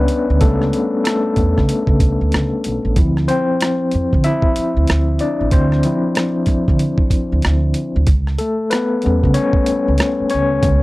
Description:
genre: R&B, neo-soul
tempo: 94 BPM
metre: 4/4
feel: swing 57% on 16ths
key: D dorian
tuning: A4 = 441 Hz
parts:
  - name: overdriven tine electric piano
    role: accompaniment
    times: 0.0-10.8 s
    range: F3 to E5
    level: -17 LUFS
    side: left 2 dB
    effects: fast tremolo
  - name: upright bass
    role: bass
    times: 0.0-10.8 s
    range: A1 to D3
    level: -17 LUFS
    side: right 1 dB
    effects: none
  - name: boom bap sampler-style drum kit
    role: drums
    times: 0.1-10.8 s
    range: hi-hat, kick drum, rim click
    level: -17 LUFS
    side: right 1 dB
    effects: none
room: little or no reverb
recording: dry, close 1970s-style studio recording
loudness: -14 LUFS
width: side -19 dB against mid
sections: 0.0-10.8 A section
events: tine electric piano solo 0.0-10.8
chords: 0.0 A7/C#; 3.0 Dm7; 8.1 A7/C#

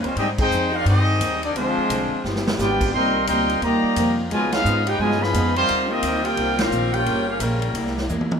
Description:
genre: jazz, big band swing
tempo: 174 BPM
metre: 4/4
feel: swing 63% on 8ths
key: unclear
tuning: A4 = 440 Hz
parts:
  - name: mellow trumpet section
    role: melody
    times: 0.0-8.1 s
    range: G3 to C6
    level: -22 LUFS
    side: equal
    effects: none
  - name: picked steel-string acoustic guitar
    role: accompaniment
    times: 0.0-8.3 s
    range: G2 to Ab4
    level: -29 LUFS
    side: equal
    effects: none
  - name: bright saxophone section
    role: sustained chords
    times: 0.0-8.4 s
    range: C3 to G4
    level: -31 LUFS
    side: left 1 dB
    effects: none
  - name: upright bass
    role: bass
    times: 0.0-8.4 s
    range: G1 to Ab2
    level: -26 LUFS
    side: equal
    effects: none
  - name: swinging big-band drum kit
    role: drums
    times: 0.0-8.4 s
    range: crash cymbal, hi-hat, kick drum, ride cymbal, snare drum, toms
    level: -28 LUFS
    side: equal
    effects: none
  - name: clear trombone section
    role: second line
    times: 0.1-8.1 s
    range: Cb3 to Ab4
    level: -25 LUFS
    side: equal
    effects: none
room: moderate echo chamber reverb, RT60 1.6 s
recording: minimal, uncompressed stereo recording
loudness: -18 LUFS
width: side -7 dB against mid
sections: 0.0-8.4 A section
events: band accent 0.3, 4.5, 6.5; drum fill 2.2-2.6, 8.1-8.4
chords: 0.2 Abmaj7; 1.6 Dm7b5; 2.2 G7b9; 2.9 Cm11; 4.3 Db9; 5.7 Eb69; 7.1 Gm7b5; 7.7 C7b13

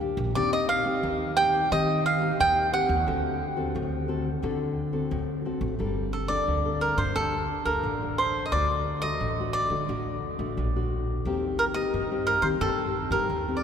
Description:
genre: samba and choro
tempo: 88 BPM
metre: 4/4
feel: straight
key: G harmonic minor from 5.8 s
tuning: A4 = 441 Hz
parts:
  - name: nylon-string guitar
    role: accompaniment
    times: 0.0-13.6 s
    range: A2 to A4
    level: -30 LUFS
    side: left 3 dB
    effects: none
  - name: upright bass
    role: bass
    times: 0.2-13.6 s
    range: G1 to Eb3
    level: -30 LUFS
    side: equal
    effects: none
  - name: cavaquinho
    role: melody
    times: 0.4-13.6 s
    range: A4 to G5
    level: -26 LUFS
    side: right 2 dB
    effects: none
room: wet cathedral reverb, RT60 5.8 s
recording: recorded in a church or concert hall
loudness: -24 LUFS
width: side -7 dB against mid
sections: 0.0-5.8 A section; 5.8-13.6 B section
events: none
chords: 0.4 Cm7/Eb; 3.1 D7; 5.8 Gmadd9; 8.5 D; 11.2 Cm7/Eb

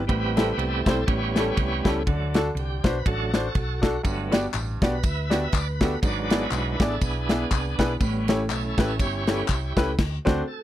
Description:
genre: uptempo gospel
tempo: 121 BPM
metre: 4/4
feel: swing 57% on 8ths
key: unclear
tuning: A4 = 438 Hz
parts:
  - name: bright tonewheel organ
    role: sustained chords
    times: 0.0-10.6 s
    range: F#3 to E5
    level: -29 LUFS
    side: right 3 dB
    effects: slow rotary speaker, overdrive
  - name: hollow-body short-scale fingered electric bass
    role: bass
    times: 0.0-10.4 s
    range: G1 to D2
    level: -29 LUFS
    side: equal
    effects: none
  - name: clear grand piano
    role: accompaniment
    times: 0.1-10.4 s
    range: G2 to E5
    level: -27 LUFS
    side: left 1 dB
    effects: none
  - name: modern studio drum kit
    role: drums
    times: 0.1-10.4 s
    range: crash cymbal, kick drum, ride cymbal, snare drum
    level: -23 LUFS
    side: equal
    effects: none
  - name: tambourine and handclaps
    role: percussion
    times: 4.0-9.9 s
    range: none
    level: -35 LUFS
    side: left 5 dB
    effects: none
room: little or no reverb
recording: dry, close 1970s-style studio recording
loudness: -22 LUFS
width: side -12 dB against mid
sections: 0.0-10.6 A section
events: tonewheel organ solo 0.0-10.6; band accent 10.0-10.6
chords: 0.1 Am7; 1.1 A7; 2.1 D; 4.1 Gmaj7; 6.0 E7/G#; 8.0 A7; 10.0 D7

